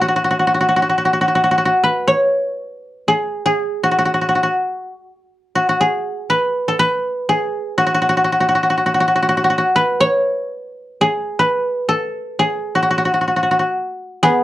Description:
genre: calypso.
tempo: 121 BPM.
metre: 4/4.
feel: swing 54% on 16ths.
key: unclear.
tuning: A4 = 440 Hz.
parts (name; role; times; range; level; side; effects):
koto; solo; 0.0-14.4 s; B3 to C#5; -15 LUFS; equal; none.
room: moderate small room reverb, RT60 0.5 s.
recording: worn, warbling old tape, cassette tape, warbly pitch drift.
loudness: -15 LUFS.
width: side -15 dB against mid.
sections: 0.0-14.0 A section.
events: none.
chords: none.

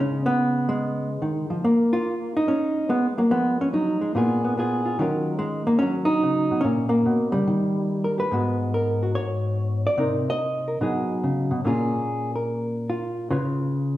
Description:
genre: solo jazz.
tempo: 144 BPM.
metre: 4/4.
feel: swing 68% on 8ths.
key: Eb minor.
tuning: A4 = 440 Hz.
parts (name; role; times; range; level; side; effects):
hollow-body jazz guitar; solo; 0.0-14.0 s; Ab2 to Eb5; -21 LUFS; equal; none.
room: wet large studio reverb, RT60 1.3 s.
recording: band playing live in one room.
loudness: -21 LUFS.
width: side -14 dB against mid.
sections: 0.0-8.3 A section; 8.3-14.0 B section.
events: none.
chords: 0.0 Db7(no3); 1.6 Gbmaj9 (rootless); 3.3 Fm7b5; 4.1 Bb5; 5.0 Ebm9; 6.6 Bbm6; 7.5 Eb; 8.3 Abm11; 10.0 Cm7; 10.8 B69; 11.6 Bbm7; 13.3 Db7.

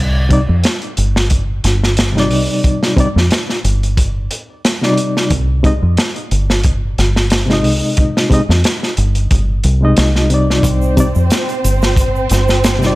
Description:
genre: trip hop.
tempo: 90 BPM.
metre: 4/4.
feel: swing 54% on 16ths.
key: C minor.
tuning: A4 = 436 Hz.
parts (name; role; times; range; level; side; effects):
deep dub fingered electric bass; bass; 0.0-13.0 s; G1 to F2; -14 LUFS; equal; none.
barky reed electric piano; accompaniment; 0.3-13.0 s; C3 to Eb5; -16 LUFS; left 1 dB; overdrive, fast tremolo, tape echo.
crunchy breakbeat drum kit; drums; 0.3-13.0 s; hi-hat, kick drum, snare drum; -16 LUFS; equal; vintage 12-bit sampler grit.
dark symphonic violin section; sustained chords; 10.6-13.0 s; C4 to C5; -19 LUFS; right 2 dB; none.
egg shaker; percussion; 10.6-12.9 s; none; -30 LUFS; right 3 dB; none.
room: small room reverb.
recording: none.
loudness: -12 LUFS.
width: side -19 dB against mid.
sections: 0.0-13.0 A section.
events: none.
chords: 0.0 Cmadd9; 5.3 Ab; 10.6 Cmadd9.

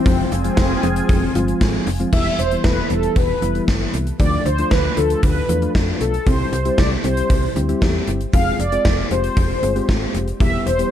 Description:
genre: synth-pop.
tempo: 116 BPM.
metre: 4/4.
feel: straight.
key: unclear.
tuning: A4 = 441 Hz.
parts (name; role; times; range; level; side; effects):
mellow synth brass; melody; 0.0-10.9 s; C4 to F5; -22 LUFS; equal; chorus, analog delay.
soft electric-piano-like synth keys; accompaniment; 0.0-10.9 s; E3 to Ab4; -23 LUFS; left 2 dB; chorus.
phased analog pad; sustained chords; 0.0-2.1, 10.8-10.9 s; E3 to Ab5; -30 LUFS; left 2 dB; phaser, chorus.
slap-like FM bass; bass; 0.1-10.8 s; E1 to F2; -22 LUFS; equal; none.
gated 80s drum kit; drums; 0.1-10.9 s; crash cymbal, hi-hat, kick drum, snare drum; -19 LUFS; equal; none.
room: light reverb, studio ambience.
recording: dark, warm production.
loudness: -16 LUFS.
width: side -10 dB against mid.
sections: 0.0-2.1 A section; 2.1-10.9 B section.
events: none.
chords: 0.1 Fm; 2.1 Em; 4.2 Dm; 6.3 C; 8.3 Fm; 10.4 Em.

